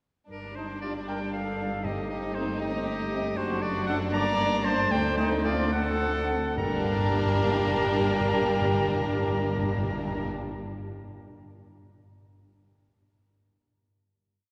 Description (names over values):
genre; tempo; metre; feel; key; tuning
quick classical-period movement for symphony orchestra; 69-80 BPM (dotted quarters); 6/8; straight; G minor; A4 = 444 Hz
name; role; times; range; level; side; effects
rich studio violin section; melody; 0.3-10.3 s; D4 to Eb4; -38 LUFS; equal; none
bright oboe; second line; 0.3-10.3 s; Bb4 to Bb5; -36 LUFS; equal; none
mellow hollow silver concert flute; second line; 0.3-10.3 s; Bb4 to Bb5; -39 LUFS; equal; none
rich studio violin section; second line; 0.3-10.3 s; Bb3 to D4; -41 LUFS; equal; none
warm studio viola section; accompaniment; 0.3-10.3 s; G3 to Bb3; -37 LUFS; equal; none
mellow trumpet section; stabs; 0.3-10.3 s; D4 to D5; -34 LUFS; equal; none
clear studio cello section; bass; 0.3-10.3 s; D2 to G2; -37 LUFS; equal; none
rich studio double bass section; bass; 0.3-10.3 s; F#1 to D2; -38 LUFS; equal; none
dark French horn section; sustained chords; 0.8-10.3 s; G3 to D4; -38 LUFS; equal; none
timpani; percussion; 1.8-2.6, 6.6-10.3 s; G2; -36 LUFS; equal; none
room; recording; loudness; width
wet church reverb, RT60 3.1 s; none; -27 LUFS; mono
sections
0.3-6.6 A section; 6.6-9.9 final chord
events
slowing down 2.6-6.6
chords
0.3 G5; 1.8 Am7b5/G; 3.4 D/F#; 4.1 Gm; 4.9 D5; 6.6 Gm